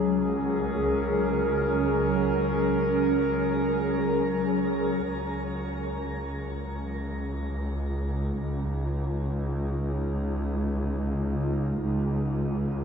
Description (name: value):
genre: ambient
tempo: free time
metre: none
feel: none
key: Db major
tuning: A4 = 440 Hz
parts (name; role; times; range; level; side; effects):
- warbly tape-like pad; sustained chords; 0.0-12.8 s; Db3 to Bb4; -27 LUFS; equal; chorus, built-in reverb, phaser
- rich chamber double bass section; bass; 0.0-12.8 s; Db2; -29 LUFS; equal; none
room: wet shimmer reverb, RT60 8.2 s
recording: none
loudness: -25 LUFS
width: side -6 dB against mid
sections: 0.0-5.1 A section; 5.1-12.8 B section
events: fade-in on ambient pad 5.1-12.8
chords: 0.0 Gb/Db; 5.1 Db